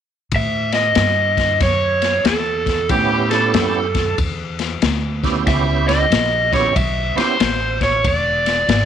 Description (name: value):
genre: electric blues shuffle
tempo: 93 BPM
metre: 4/4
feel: swing 64% on 8ths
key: A mixolydian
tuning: A4 = 440 Hz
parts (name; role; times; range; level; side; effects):
- upright bass; bass; 0.3-8.9 s; E1 to A2; -22 LUFS; right 1 dB; none
- crunchy breakbeat drum kit; drums; 0.3-8.9 s; kick drum, ride cymbal, snare drum; -20 LUFS; left 5 dB; none
- raw garage guitar; melody; 0.4-8.9 s; G4 to E5; -18 LUFS; right 1 dB; overdrive
- tonewheel organ; accompaniment; 2.9-7.4 s; B3 to G4; -22 LUFS; right 12 dB; slow rotary speaker, chorus vibrato
room: light reverb, small room ambience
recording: 1960s-style stereo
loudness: -15 LUFS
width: side -9 dB against mid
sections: 0.3-8.9 A section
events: none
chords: 0.3 A7; 8.0 E7